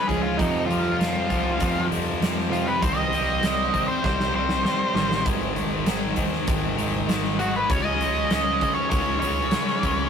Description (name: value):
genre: quiet-loud alternative rock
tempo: 98 BPM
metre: 4/4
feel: straight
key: unclear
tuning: A4 = 439 Hz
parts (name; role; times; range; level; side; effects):
- octave-fuzz lead guitar; melody; 0.0-10.1 s; D#4 to Eb5; -25 LUFS; equal; distortion
- fingerpicked steel-string acoustic guitar; arpeggios; 0.0-5.2 s; F2 to G#3; -32 LUFS; right 4 dB; none
- thick fuzz guitar; riff; 0.0-10.1 s; F2 to C#4; -31 LUFS; right 3 dB; distortion
- tight distorted guitar; riff; 0.0-10.1 s; F2 to C#4; -28 LUFS; left 5 dB; distortion
- growling picked electric bass; bass; 0.1-10.1 s; G#1 to C#3; -30 LUFS; equal; overdrive
- huge arena drum kit; drums; 0.1-10.0 s; hi-hat, kick drum, snare drum; -26 LUFS; equal; none
room: light reverb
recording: rough rehearsal-room recording, tube saturation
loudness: -21 LUFS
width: side -7 dB against mid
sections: 0.0-10.1 A section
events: lead electric guitar solo 0.0-10.1; drum fill 4.0-5.3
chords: 0.4 F5; 2.8 Cm; 5.3 G#5; 7.7 C#5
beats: | 0.39 1.00 1.60 2.21 | 2.82 3.43 4.04 4.65 | 5.26 5.87 6.47 7.08 | 7.70 8.30 8.92 9.53